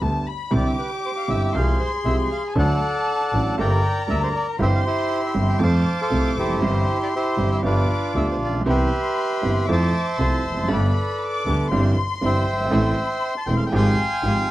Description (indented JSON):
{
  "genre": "tango",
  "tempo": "118 BPM",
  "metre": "4/4",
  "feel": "rubato",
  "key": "C major",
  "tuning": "A4 = 435 Hz",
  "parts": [
    { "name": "warm chamber violin section", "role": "second line", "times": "0.0-14.5 s", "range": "Ab5 to D6", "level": "-29 LUFS", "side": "left 5 dB", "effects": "none" },
    { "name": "clear upright piano", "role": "accompaniment", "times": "0.0-14.4 s", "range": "E1 to A4", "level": "-24 LUFS", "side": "right 2 dB", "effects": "none" },
    { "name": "clear double bass", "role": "bass", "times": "0.0-14.4 s", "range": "E1 to F2", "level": "-22 LUFS", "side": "equal", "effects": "none" },
    { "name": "bandoneon", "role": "melody", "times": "0.6-14.5 s", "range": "D4 to C6", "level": "-24 LUFS", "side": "right 1 dB", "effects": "none" },
    { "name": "bright symphonic string section", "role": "stabs", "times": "8.7-14.4 s", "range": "Ab3 to G4", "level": "-31 LUFS", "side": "right 3 dB", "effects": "none" }
  ],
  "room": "little or no reverb",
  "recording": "dry, close 1970s-style studio recording, vinyl crackle",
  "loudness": "-19 LUFS",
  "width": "side -15 dB against mid",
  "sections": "0.0-14.5 A section",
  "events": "none",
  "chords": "0.0 G; 0.5 Cadd9; 1.5 Fmadd9/C; 2.6 D; 3.6 Gmadd9; 4.6 C/G; 5.6 F; 6.6 C/G; 7.6 G7; 8.7 Cmaj7; 9.7 Fmaj7; 10.7 Gadd9; 11.7 Cadd9/G; 12.7 Am; 13.7 Fmadd9/Ab"
}